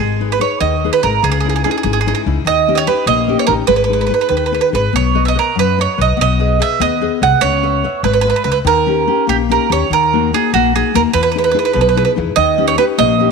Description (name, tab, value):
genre	italian folk, Italian serenade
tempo	97 BPM (dotted quarters)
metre	6/8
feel	rubato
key	G# minor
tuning	A4 = 442 Hz
part	bowl-back mandolin	melody	0.0-13.3 s	F#4 to F#5	-14 LUFS	right 8 dB	none
part	nylon-string guitar	accompaniment	0.0-13.3 s	B2 to E5	-18 LUFS	left 17 dB	none
part	upright bass	bass	0.0-13.3 s	G#1 to F#2	-19 LUFS	left 2 dB	none
room	moderate plate reverb, RT60 2.5 s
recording	1960s-style stereo with parts hard left and right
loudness	-12 LUFS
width	side -5 dB against mid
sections	0.0-13.3 A section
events	none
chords	0.0 G#m; 1.2 C#madd9; 2.5 D#7; 3.7 G#m; 4.9 Badd9; 6.2 G#m/B; 7.4 C#m7; 8.7 D#7; 9.9 D#m; 11.1 Emaj7; 12.4 D#7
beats	0.60 | 1.23 1.84 | 2.45 3.06 | 3.68 4.30 | 4.94 5.57 | 6.18 6.80 | 7.41 8.03 | 8.65 9.27 | 9.90 10.52 | 11.14 11.75 | 12.37 12.98